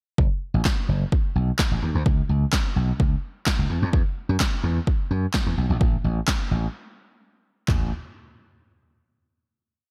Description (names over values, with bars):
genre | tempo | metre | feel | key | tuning
dance-pop | 128 BPM | 4/4 | straight | unclear | A4 = 445 Hz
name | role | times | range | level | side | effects
slap bass | bass | 0.2-7.9 s | F#1 to F#2 | -25 LUFS | equal | sidechain pumping
deep house drum kit | drums | 0.2-7.8 s | handclaps, kick drum, snare drum, toms | -25 LUFS | equal | overdrive
room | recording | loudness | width
digital ambience | none | -23 LUFS | mono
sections
0.2-7.7 verse; 7.7-9.6 final note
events
break 6.7-7.7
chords
none